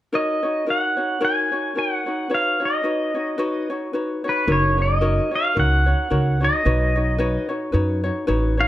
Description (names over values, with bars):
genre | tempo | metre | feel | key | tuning
Hawaiian | 110 BPM | 4/4 | swing 57% on 8ths | F# major | A4 = 439 Hz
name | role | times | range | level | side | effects
ukulele | accompaniment | 0.1-8.7 s | D#4 to C#5 | -24 LUFS | left 2 dB | none
pedal steel guitar | melody | 0.2-8.7 s | B4 to G#5 | -21 LUFS | equal | none
upright bass | bass | 4.5-8.6 s | F#1 to F#2 | -20 LUFS | equal | none
room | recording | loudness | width
light reverb, small room ambience | none | -19 LUFS | side -14 dB against mid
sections
0.1-4.5 A section; 4.5-8.7 B section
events
none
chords
0.1 F#6; 2.3 Badd9; 4.5 F#6; 6.7 Badd9